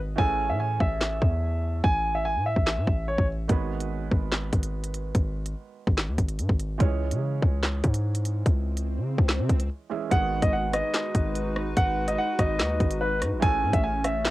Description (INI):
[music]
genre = hip hop, drill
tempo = 145 BPM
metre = 4/4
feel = half-time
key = G# phrygian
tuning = A4 = 440 Hz
[part]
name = felt-muted upright piano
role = accompaniment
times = 0.0-14.3 s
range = D#3 to E5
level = -36 LUFS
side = right 8 dB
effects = cassette tape
[part]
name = hard-hitting 808-style bass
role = bass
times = 0.0-14.3 s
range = G#1 to C#3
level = -28 LUFS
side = equal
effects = none
[part]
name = warm concert grand piano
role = melody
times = 0.2-3.3, 10.1-14.3 s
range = B4 to G#5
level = -27 LUFS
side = equal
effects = cassette tape, tape echo
[part]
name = drill drum kit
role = drums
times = 0.2-14.3 s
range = handclaps, hi-hat, kick drum, rim click, snare drum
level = -25 LUFS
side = equal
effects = cassette tape
[part]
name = swell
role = sound effects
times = 8.3-9.7 s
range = none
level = -37 LUFS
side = right 2 dB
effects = none
[part]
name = hollow soft pad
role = sustained chords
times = 10.1-14.3 s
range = G#3 to B4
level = -32 LUFS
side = equal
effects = chorus, cassette tape
[sound]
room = little or no reverb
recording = home recording on cassette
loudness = -23 LUFS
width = side -17 dB against mid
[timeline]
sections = 0.0-10.1 A section; 10.1-14.3 B section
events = break 0.0-3.5, 9.7-10.1; swell 8.3-10.1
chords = 0.2 Amaj7; 3.5 G#m7; 6.8 C#m; 10.1 G#m7; 13.4 Amaj7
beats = | 0.18 0.60 1.01 1.43 | 1.84 2.25 2.67 3.08 | 3.49 3.91 4.32 4.74 | 5.15 5.56 5.98 6.39 | 6.80 7.22 7.63 8.04 | 8.46 8.87 9.29 9.70 | 10.11 10.53 10.94 11.36 | 11.77 12.18 12.60 13.01 | 13.43 13.84 14.25